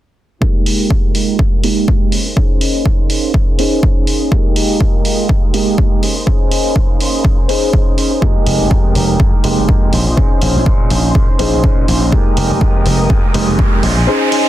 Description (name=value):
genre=filtered disco house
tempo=123 BPM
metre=4/4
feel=swing 56% on 16ths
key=F minor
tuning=A4 = 440 Hz
part: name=dark baby grand piano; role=accompaniment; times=0.4-14.5 s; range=Ab3 to C5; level=-17 LUFS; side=right 1 dB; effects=phaser, sidechain pumping, low-pass filter
part: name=bright symphonic violin section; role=sustained chords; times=0.4-14.5 s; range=Bb3 to Eb6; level=-28 LUFS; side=left 1 dB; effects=sidechain pumping, low-pass filter
part: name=direct-recorded clean electric guitar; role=riff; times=0.4-14.5 s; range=Ab3 to C5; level=-24 LUFS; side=right 1 dB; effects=sidechain pumping, low-pass filter
part: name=electronic kick drum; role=drums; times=0.4-13.7 s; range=none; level=-14 LUFS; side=equal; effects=none
part: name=electronic hi-hat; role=drums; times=0.7-14.4 s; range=none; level=-22 LUFS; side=right 1 dB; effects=none
part: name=glassy slap bass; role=bass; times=8.2-14.1 s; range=F1 to Bb2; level=-16 LUFS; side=equal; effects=sidechain pumping, low-pass filter
part: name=riser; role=sound effects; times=12.7-14.5 s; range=none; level=-22 LUFS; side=right 2 dB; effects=none
room=digital ambience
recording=dense, heavily limited modern master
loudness=-11 LUFS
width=side -13 dB against mid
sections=0.4-14.5 A section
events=filter sweep 0.4-14.5; riser 12.7-14.5; kick drops out 14.1-14.5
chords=0.4 Fm11; 2.1 Bbm11; 4.3 Fm11; 6.0 Bbm11; 8.2 Fm11; 9.9 Bbm11; 12.1 Fm11; 13.8 Bbm11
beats=| 0.42 0.91 1.39 1.88 | 2.37 2.86 3.35 3.83 | 4.32 4.81 5.30 5.78 | 6.27 6.76 7.25 7.74 | 8.22 8.71 9.20 9.69 | 10.18 10.66 11.15 11.64 | 12.13 12.61 13.10 13.59 | 14.08